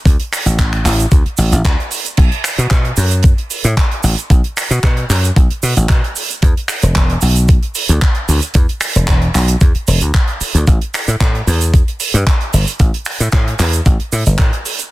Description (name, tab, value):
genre	nu-disco, nu disco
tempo	113 BPM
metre	4/4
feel	straight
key	unclear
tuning	A4 = 440 Hz
part	dry thumbed slap bass	bass	0.1-14.5 s	E1 to B2	-14 LUFS	equal	none
part	damped 70s drum kit	drums	0.1-14.9 s	crash cymbal, finger snaps, handclaps, hi-hat, shaker	-19 LUFS	right 2 dB	soft clipping on snare
part	electronic kick drum	drums	0.1-14.5 s	none	-11 LUFS	equal	none
room	little or no reverb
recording	dense, heavily limited modern master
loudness	-11 LUFS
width	side -18 dB against mid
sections	0.0-14.9 A section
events	none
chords	none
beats	| 0.05 0.58 1.12 1.65 | 2.18 2.71 3.24 3.77 | 4.30 4.83 5.36 5.89 | 6.43 6.96 7.49 8.02 | 8.55 9.08 9.61 10.14 | 10.67 11.21 11.74 12.27 | 12.80 13.33 13.86 14.39